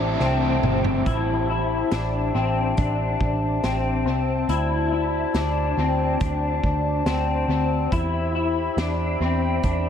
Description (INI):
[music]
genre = dream pop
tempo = 70 BPM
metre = 4/4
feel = straight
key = A minor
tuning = A4 = 440 Hz
[part]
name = biting overdriven guitar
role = accompaniment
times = 0.0-1.6 s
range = A2 to A4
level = -29 LUFS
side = right 3 dB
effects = tremolo, wide subtle chorus, tape echo, shimmer reverb
[part]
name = warm brass ensemble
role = sustained chords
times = 0.0-9.9 s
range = F#4 to B5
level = -27 LUFS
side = equal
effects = stereo widening, shimmer reverb
[part]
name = electric guitar through a small old amp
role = arpeggios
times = 0.0-9.9 s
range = C4 to E4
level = -25 LUFS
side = left 5 dB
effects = ensemble chorus, tape echo, shimmer reverb
[part]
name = vintage muted picked electric bass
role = bass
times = 0.0-9.9 s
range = G1 to E2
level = -25 LUFS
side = right 1 dB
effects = none
[part]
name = vintage drum kit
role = drums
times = 0.2-9.8 s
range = hi-hat, kick drum, snare drum, toms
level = -29 LUFS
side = right 1 dB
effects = tape echo
[sound]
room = light reverb, small room ambience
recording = echo-heavy mix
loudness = -20 LUFS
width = side -8 dB against mid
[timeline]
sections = 0.0-1.1 A section; 1.1-9.9 B section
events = drum fill 0.2-1.1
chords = 0.0 Am7; 4.5 D7; 7.9 Cmaj7/E